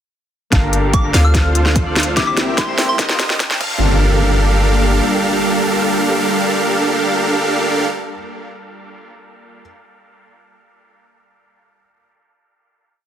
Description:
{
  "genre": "future bass",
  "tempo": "146 BPM",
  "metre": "4/4",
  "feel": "half-time",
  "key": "G minor",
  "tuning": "A4 = 440 Hz",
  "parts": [
    { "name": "felt-muted upright piano", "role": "accompaniment", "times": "0.5-9.6 s", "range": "Bb3 to A5", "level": "-30 LUFS", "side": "left 3 dB", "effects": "none" },
    { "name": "ethereal airy pad", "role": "sustained chords", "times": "1.6-7.9 s", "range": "G3 to A5", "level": "-25 LUFS", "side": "equal", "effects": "ensemble chorus, built-in reverb, sidechain pumping" },
    { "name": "Celtic harp", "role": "arpeggios", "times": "0.5-6.1 s", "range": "E4 to A5", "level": "-31 LUFS", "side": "left 3 dB", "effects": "none" },
    { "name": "wide unison pluck", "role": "arpeggios", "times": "0.5-8.1 s", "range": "Eb5 to F5", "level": "-30 LUFS", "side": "right 1 dB", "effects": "none" },
    { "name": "supersaw chords", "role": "riff", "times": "0.5-7.9 s", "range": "C4 to F5", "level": "-18 LUFS", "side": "right 1 dB", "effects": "sidechain pumping, low-pass filter, dub echo" },
    { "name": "warm 808-style bass", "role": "bass", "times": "0.5-5.0 s", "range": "F1 to D2", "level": "-16 LUFS", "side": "equal", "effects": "sidechain pumping" },
    { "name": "electronic kick drum", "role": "drums", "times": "0.5-3.7 s", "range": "none", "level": "-18 LUFS", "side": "equal", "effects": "overdrive, studio reverb" },
    { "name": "trap drum kit", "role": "drums", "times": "0.5-3.7 s", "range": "crash cymbal, hi-hat, snare drum", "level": "-18 LUFS", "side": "equal", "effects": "studio reverb" },
    { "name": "riser and impact", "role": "sound effects", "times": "2.3-8.2 s", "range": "none", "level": "-28 LUFS", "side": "equal", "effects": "none" },
    { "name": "soft synth bell", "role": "melody", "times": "0.9-3.0 s", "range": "C6 to F6", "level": "-23 LUFS", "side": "left 1 dB", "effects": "chorus, phaser, vintage 12-bit sampler grit, sidechain pumping, tape echo" }
  ],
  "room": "light reverb, digital ambience",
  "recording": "dense, heavily limited modern master, high-pass filter",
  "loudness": "-13 LUFS",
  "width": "side -10 dB against mid",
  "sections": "0.5-3.8 build; 3.8-7.1 final hit",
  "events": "build-up 0.5-3.8; drum fill 0.5-3.8; filter sweep on supersaw synth 0.5-3.8; filter sweep 0.5-3.8",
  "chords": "0.5 Gm9; 1.1 Dm7; 2.2 C7; 3.0 F9sus4; 3.6 Gm9",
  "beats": "| 0.52 0.94 1.35 1.76 | 2.17 2.58 2.99 3.40 | 3.81 4.22 4.63 5.04 | 5.46 5.87 6.28 6.69"
}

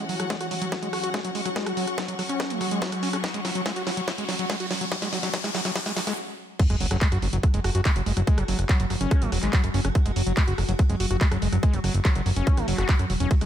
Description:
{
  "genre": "psychedelic trance",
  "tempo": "143 BPM",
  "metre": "4/4",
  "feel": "straight",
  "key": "unclear",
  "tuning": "A4 = 440 Hz",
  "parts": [
    { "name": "evolving wavetable pad", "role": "sustained chords", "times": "0.0-13.5 s", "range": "F#3 to F#4", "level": "-34 LUFS", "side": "left 1 dB", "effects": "phaser, built-in reverb, sidechain pumping" },
    { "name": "overdriven acid bass", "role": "riff", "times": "0.0-13.5 s", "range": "F#3 to F#4", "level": "-30 LUFS", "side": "equal", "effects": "distortion, auto-pan, vintage 12-bit sampler grit, sidechain pumping, tape echo" },
    { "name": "riser and sub drop", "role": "sound effects", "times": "0.0-8.3 s", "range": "none", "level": "-35 LUFS", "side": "equal", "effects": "none" },
    { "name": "rich studio string section", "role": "texture", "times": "0.0-6.2 s", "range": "C#4 to C#6", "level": "-34 LUFS", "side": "left 3 dB", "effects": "sidechain pumping" },
    { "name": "techno drum kit", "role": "drums", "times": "0.1-13.5 s", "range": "crash cymbal, handclaps, hi-hat, ride cymbal, rim click, snare drum", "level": "-31 LUFS", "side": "equal", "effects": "high-pass filter on snare, high-pass filter on hats, high-pass filter on cymbals, high-pass filter on room" },
    { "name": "electronic kick drum", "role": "drums", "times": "0.3-13.4 s", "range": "none", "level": "-22 LUFS", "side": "equal", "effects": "overdrive, high-pass filter on kick" },
    { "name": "fat analog bass", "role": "bass", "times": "6.7-13.5 s", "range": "E1 to F#2", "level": "-25 LUFS", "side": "equal", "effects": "none" }
  ],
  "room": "little or no reverb",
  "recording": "none",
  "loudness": "-22 LUFS",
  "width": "side -10 dB against mid",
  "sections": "0.0-6.6 A section; 6.6-13.5 B section",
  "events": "build-up 0.0-6.6; drum fill 0.0-6.2; riser 0.0-6.2; filter sweep on ambient pad 0.0-6.6; stop 6.2-6.6; drop 6.6-13.5; impact 6.6-8.3",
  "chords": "0.0 F#5",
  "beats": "0.30 0.72 1.14 | 1.56 1.98 2.40 2.82 | 3.24 3.66 4.08 4.50 | 4.92 5.34 5.76 6.17 | 6.59 7.01 7.43 7.85 | 8.27 8.69 9.11 9.53 | 9.95 10.37 10.79 11.21 | 11.63 12.05 12.47 12.89 | 13.31"
}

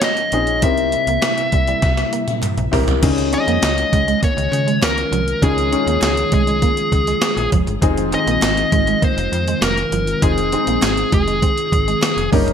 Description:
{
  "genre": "1980s-style pop",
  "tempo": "100 BPM",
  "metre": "4/4",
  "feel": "straight",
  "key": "F minor",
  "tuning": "A4 = 442 Hz",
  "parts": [
    { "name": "dark smooth lead guitar", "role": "melody", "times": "0.0-12.3 s", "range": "Ab4 to E5", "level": "-20 LUFS", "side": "left 1 dB", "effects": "overdrive" },
    { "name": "warm grand piano", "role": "accompaniment", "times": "0.0-12.5 s", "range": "G2 to Bb4", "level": "-23 LUFS", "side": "left 5 dB", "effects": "wide subtle chorus" },
    { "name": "string machine, cellos", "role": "sustained chords", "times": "0.0-12.5 s", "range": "C3 to G4", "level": "-26 LUFS", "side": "left 1 dB", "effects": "ensemble chorus" },
    { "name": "gated 80s digital drum machine", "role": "drums", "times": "0.0-12.5 s", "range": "crash cymbal, hi-hat, kick drum, snare drum, tambourine, toms", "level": "-19 LUFS", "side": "right 1 dB", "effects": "gated reverb, gated reverb snare" },
    { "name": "group handclap", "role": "percussion", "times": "0.0-12.2 s", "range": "none", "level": "-36 LUFS", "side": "right 4 dB", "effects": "none" },
    { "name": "electric guitar at the edge of break-up", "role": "riff", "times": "0.3-12.4 s", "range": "F3 to Db4", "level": "-26 LUFS", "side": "right 8 dB", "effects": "lush chorus" },
    { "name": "slap-like FM bass", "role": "bass", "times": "0.3-12.5 s", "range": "F1 to Db3", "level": "-23 LUFS", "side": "equal", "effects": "none" }
  ],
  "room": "moderate plate reverb, RT60 1.4 s, digital ambience",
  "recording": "bright 1980s-style digital production, faint mains hum",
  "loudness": "-15 LUFS",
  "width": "side -8 dB against mid",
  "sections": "0.0-3.0 A section; 3.0-12.5 B section",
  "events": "drum fill 1.8-3.0",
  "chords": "0.0 Dbadd9; 0.6 C7; 3.0 Dbadd9; 7.8 Fm7",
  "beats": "0.02 | 0.62 1.22 1.82 2.42 | 3.02 3.62 4.22 4.82 | 5.42 6.02 6.62 7.22 | 7.82 8.42 9.02 9.62 | 10.22 10.82 11.42 12.02"
}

